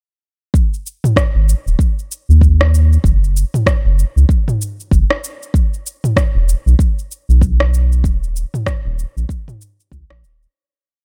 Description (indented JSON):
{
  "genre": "organic downtempo",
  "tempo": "96 BPM",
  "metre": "4/4",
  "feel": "swing 59% on 16ths",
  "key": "unclear",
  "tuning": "A4 = 440 Hz",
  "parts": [
    { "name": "electronic kick drum", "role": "drums", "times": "0.5-10.1 s", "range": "none", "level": "-17 LUFS", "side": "equal", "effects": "none" },
    { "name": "deep house drum kit", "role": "drums", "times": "0.6-10.5 s", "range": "rim click, shaker, toms", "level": "-21 LUFS", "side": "equal", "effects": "none" },
    { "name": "round analog bass", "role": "bass", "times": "1.4-10.5 s", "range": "D#1 to D#2", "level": "-14 LUFS", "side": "equal", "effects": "none" }
  ],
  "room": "little or no reverb",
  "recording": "dry, gritty hardware recording, transformer saturation",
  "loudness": "-15 LUFS",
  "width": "mono",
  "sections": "0.5-10.5 groove",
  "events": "fade-out 7.2-10.5",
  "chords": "none"
}